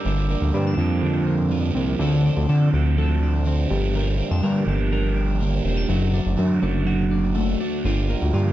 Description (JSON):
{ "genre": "indie pop", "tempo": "123 BPM", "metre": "4/4", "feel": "straight", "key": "unclear", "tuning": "A4 = 440 Hz", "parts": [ { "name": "crunchy overdriven guitar", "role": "accompaniment", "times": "0.0-8.5 s", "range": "G2 to Bb4", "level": "-25 LUFS", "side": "right 4 dB", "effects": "phaser" }, { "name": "twelve-string electric guitar", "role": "arpeggios", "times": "0.0-8.5 s", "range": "G2 to Bb4", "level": "-26 LUFS", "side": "left 3 dB", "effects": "none" }, { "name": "fat analog bass", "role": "bass", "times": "0.1-8.5 s", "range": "E1 to D3", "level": "-21 LUFS", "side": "equal", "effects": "none" } ], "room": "moderate club reverb, RT60 0.7 s", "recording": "dark, warm production", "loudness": "-19 LUFS", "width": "side -13 dB against mid", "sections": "0.1-8.5 A section", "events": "none", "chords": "0.1 Gm7; 2.0 Dm7; 3.7 Gm7; 5.9 D/F#; 7.8 Gm7" }